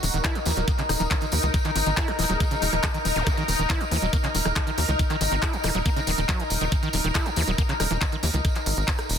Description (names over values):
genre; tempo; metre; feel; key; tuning
psychedelic trance; 139 BPM; 4/4; straight; unclear; A4 = 440 Hz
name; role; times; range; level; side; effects
bubbling stepped-filter texture; sustained chords; 0.0-9.2 s; Eb4 to Bb4; -28 LUFS; left 2 dB; chorus, built-in reverb, sidechain pumping
overdriven acid bass; riff; 0.0-8.4 s; Db3 to Fb4; -30 LUFS; right 1 dB; distortion, auto-pan, sidechain pumping, digital delay
tight sequencer bass; bass; 0.0-9.2 s; Eb1 to Eb2; -26 LUFS; equal; none
drum and bass drum kit; drums; 0.0-9.2 s; handclaps, hi-hat, rim click; -30 LUFS; equal; none
tambourine; percussion; 0.0-9.2 s; none; -33 LUFS; right 2 dB; none
electronic kick drum; drums; 0.2-9.0 s; none; -25 LUFS; equal; none
vowel-sweep wobble bass; second line; 0.6-2.7, 7.5-8.0 s; Ab3 to Db4; -44 LUFS; left 1 dB; none
zap; sound effects; 3.2-3.3 s; none; -37 LUFS; left 1 dB; none
room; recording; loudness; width
little or no reverb; dense, heavily limited modern master; -21 LUFS; side -8 dB against mid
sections
0.0-9.2 A section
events
none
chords
0.0 Eb5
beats
0.24 0.68 1.11 | 1.54 1.97 2.40 2.83 | 3.27 3.70 4.13 4.56 | 4.99 5.42 5.86 6.29 | 6.72 7.15 7.58 8.02 | 8.45 8.88